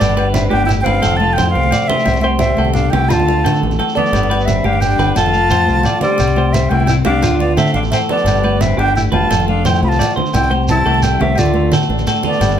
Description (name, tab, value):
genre	highlife guitar band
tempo	116 BPM (dotted quarters)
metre	12/8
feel	straight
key	C major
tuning	A4 = 440 Hz
part	wooden flute	melody	0.0-12.6 s	D5 to B5	-18 LUFS	right 2 dB	none
part	warm alto saxophone	second line	0.0-12.6 s	G3 to F4	-23 LUFS	left 3 dB	none
part	clean electric guitar	accompaniment	0.0-12.6 s	A2 to C5	-22 LUFS	left 9 dB	none
part	clean electric guitar	arpeggios	0.0-12.6 s	F4 to D5	-21 LUFS	right 4 dB	slapback echo
part	deep dub fingered electric bass	bass	0.0-12.6 s	E1 to D3	-17 LUFS	equal	none
part	agogo bells	percussion	0.0-12.6 s	none	-25 LUFS	left 3 dB	none
part	congas	percussion	0.0-12.6 s	none	-21 LUFS	right 3 dB	none
part	shekere	percussion	0.0-12.6 s	none	-22 LUFS	right 3 dB	none
room	light reverb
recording	none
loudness	-12 LUFS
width	side -9 dB against mid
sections	0.0-12.6 A section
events	none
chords	0.0 G; 1.0 F; 2.1 C; 3.1 Dm; 4.1 G; 5.2 F; 6.2 C5; 7.2 Dm; 8.3 G; 9.3 F; 10.3 C; 11.4 Dm